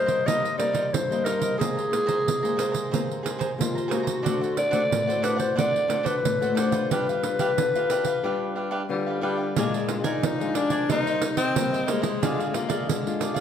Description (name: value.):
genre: samba and choro.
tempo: 90 BPM.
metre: 4/4.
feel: straight.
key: C minor.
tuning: A4 = 440 Hz.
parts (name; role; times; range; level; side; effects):
growling clarinet; melody; 0.0-8.9 s; F4 to Eb5; -25 LUFS; left 1 dB; none.
cavaquinho; accompaniment; 0.0-13.4 s; D4 to Bb5; -31 LUFS; right 2 dB; none.
nylon-string guitar; accompaniment; 0.0-13.4 s; G2 to B4; -30 LUFS; left 4 dB; none.
pandeiro; percussion; 0.1-13.4 s; none; -29 LUFS; right 6 dB; none.
breathy tenor saxophone; second line; 8.9-13.3 s; G3 to Eb4; -26 LUFS; left 4 dB; none.
room: wet large studio reverb, RT60 1.3 s.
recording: none.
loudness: -22 LUFS.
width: side -8 dB against mid.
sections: 0.0-9.6 A section; 9.6-13.4 B section.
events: break 8.2-9.6; tenor saxophone solo 9.6-13.4.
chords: 0.0 Cm7; 1.6 Abadd9/C; 4.2 D7; 6.9 G7; 9.6 Bb7; 10.9 Cm7; 12.2 Ddim.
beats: 0.26 0.93 | 1.59 2.26 2.92 3.59 | 4.25 4.92 5.58 6.24 | 6.91 7.57 8.24 8.90 | 9.57 10.23 10.90 11.56 | 12.23 12.89.